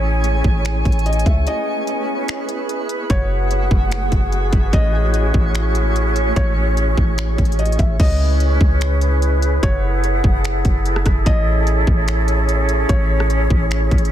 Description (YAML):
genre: hip hop, atmospheric cloud-rap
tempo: 147 BPM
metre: 4/4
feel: half-time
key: unclear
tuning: A4 = 439 Hz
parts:
  - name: felt-muted upright piano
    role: melody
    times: 0.0-13.3 s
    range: C#5 to E5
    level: -29 LUFS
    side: left 1 dB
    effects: tape echo
  - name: large flute ensemble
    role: sustained chords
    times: 0.0-14.1 s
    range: C#4 to G#5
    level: -22 LUFS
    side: right 1 dB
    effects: sidechain pumping
  - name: soft 808-style bass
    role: bass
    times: 0.0-14.1 s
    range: F#1 to C#2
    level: -18 LUFS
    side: equal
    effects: none
  - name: twinkling granular texture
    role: texture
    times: 0.0-8.0 s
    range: A3 to C#5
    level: -31 LUFS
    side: right 1 dB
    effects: built-in reverb
  - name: trap drum kit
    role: drums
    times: 0.2-14.1 s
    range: crash cymbal, finger snaps, hi-hat, kick drum, rim click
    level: -18 LUFS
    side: equal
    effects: soft clipping on snare
room: little or no reverb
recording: dense, heavily limited modern master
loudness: -15 LUFS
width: side -11 dB against mid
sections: 0.0-8.0 A section; 8.0-14.1 B section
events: break 1.5-2.3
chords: 0.0 Amaj7; 1.5 C#m7; 3.1 F#m11; 4.7 Amaj7; 8.0 C#m7; 9.6 F#m11; 11.3 Amaj7